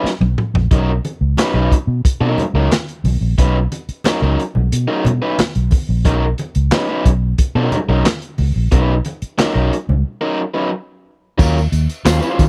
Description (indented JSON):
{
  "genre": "funk",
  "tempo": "90 BPM",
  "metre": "4/4",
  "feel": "straight",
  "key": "unclear",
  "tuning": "A4 = 440 Hz",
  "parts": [
    { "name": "raw garage guitar", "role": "accompaniment", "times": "0.0-12.4 s", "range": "F#3 to C5", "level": "-21 LUFS", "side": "equal", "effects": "overdrive" },
    { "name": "vintage muted fingered electric bass", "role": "bass", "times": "0.0-12.5 s", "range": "A#1 to Eb3", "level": "-18 LUFS", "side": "equal", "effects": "none" },
    { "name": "crunchy breakbeat drum kit", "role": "drums", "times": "0.1-12.5 s", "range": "crash cymbal, handclaps, hi-hat, kick drum, snare drum, toms", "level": "-19 LUFS", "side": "equal", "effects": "none" },
    { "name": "congas", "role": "percussion", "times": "0.7-10.0 s", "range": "none", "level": "-28 LUFS", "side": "equal", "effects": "none" },
    { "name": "tambourine", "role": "percussion", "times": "11.4-12.5 s", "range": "none", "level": "-37 LUFS", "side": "equal", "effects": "none" }
  ],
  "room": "small room ambience",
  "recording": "dry, close 1970s-style studio recording",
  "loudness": "-17 LUFS",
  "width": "mono",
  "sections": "0.0-11.4 A section; 11.4-12.5 B section",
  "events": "drum fill 0.0-0.7; break 10.1-11.4",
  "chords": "0.0 Bmaj9; 11.4 Ebm9",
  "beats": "0.04 | 0.71 1.38 2.04 2.71 | 3.38 4.05 4.71 5.38 | 6.05 6.72 7.39 8.05 | 8.72 9.39 10.06 10.72 | 11.39 12.06"
}